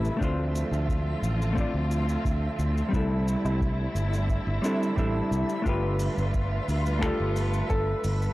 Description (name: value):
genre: sunset chillout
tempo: 88 BPM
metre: 4/4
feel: straight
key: D dorian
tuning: A4 = 440 Hz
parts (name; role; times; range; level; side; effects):
- hollow-body jazz guitar; accompaniment; 0.0-8.3 s; G3 to D5; -30 LUFS; equal; auto-pan, analog delay
- warm studio string section; sustained chords; 0.0-8.3 s; C3 to B4; -33 LUFS; equal; none
- fretless electric bass; bass; 0.0-8.3 s; G1 to D2; -27 LUFS; equal; none
- vintage brush drum kit; drums; 0.0-8.3 s; cabasa, finger snaps, hi-hat, woodblock; -42 LUFS; equal; none
- twinkling granular texture; texture; 0.0-8.3 s; E5; -40 LUFS; right 5 dB; built-in reverb
- electronic kick drum; drums; 0.2-7.8 s; none; -29 LUFS; equal; none
- clear grand piano; melody; 7.0-8.3 s; A4; -31 LUFS; equal; analog delay
room: small room ambience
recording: dry, gritty hardware recording, cassette tape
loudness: -24 LUFS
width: side -17 dB against mid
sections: 0.0-8.3 A section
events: none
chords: 0.2 Dm7; 2.9 C69; 5.7 G9